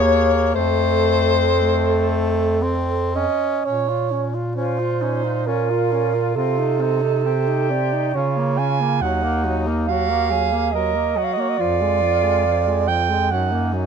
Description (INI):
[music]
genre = classical, lyrical piece for single-reed quartet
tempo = 55-72 BPM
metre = 3/4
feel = rubato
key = Bb minor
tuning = A4 = 440 Hz
[part]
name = mellow soprano saxophone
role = melody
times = 0.0-13.9 s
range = Eb4 to Db5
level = -23 LUFS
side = left 6 dB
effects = none
[part]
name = dark alto saxophone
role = second line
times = 0.0-13.7 s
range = Ab4 to Ab5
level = -22 LUFS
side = right 10 dB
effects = none
[part]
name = warm tenor saxophone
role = accompaniment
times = 0.0-13.9 s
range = F3 to F4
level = -25 LUFS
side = left 3 dB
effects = none
[part]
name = clear bass clarinet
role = bass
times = 0.0-13.9 s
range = D#2 to Db3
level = -23 LUFS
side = right 2 dB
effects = none
[sound]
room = light reverb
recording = close, detailed microphones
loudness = -17 LUFS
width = side -6 dB against mid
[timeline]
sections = 0.0-3.7 A section; 3.7-13.9 B section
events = none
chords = 0.0 N.C.; 0.6 F; 3.7 Bbm; 6.4 Adim/C; 8.2 Bbm/Db; 9.0 Ebm; 11.6 Ddim/F; 13.3 Ebm/Gb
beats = | 0.56 1.61 2.63 | 3.65 4.57 5.47 | 6.37 7.25 8.15 | 9.03 9.88 10.73 | 11.59 12.46 13.32